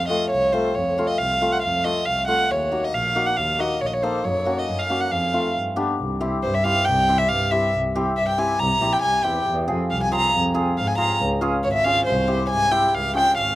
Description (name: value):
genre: klezmer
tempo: 138 BPM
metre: 2/4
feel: straight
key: F phrygian dominant, C phrygian dominant from 6.0 s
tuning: A4 = 440 Hz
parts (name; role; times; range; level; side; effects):
- warm violin; melody; 0.0-13.6 s; C5 to Bb5; -21 LUFS; equal; slapback echo
- hammered dulcimer; accompaniment; 0.1-13.3 s; A3 to A4; -25 LUFS; left 1 dB; slapback echo
- warm double bass; bass; 0.3-13.5 s; Ab1 to Ab2; -27 LUFS; equal; none
room: little or no reverb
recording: recorded outdoors, with no room sound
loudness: -19 LUFS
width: side -15 dB against mid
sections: 0.0-6.0 A section; 6.0-12.9 B section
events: none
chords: 0.0 F; 2.5 Ebm; 4.2 Gb; 5.1 F; 5.6 G; 6.0 C; 9.5 Fm; 11.2 Db; 12.1 C; 12.9 Db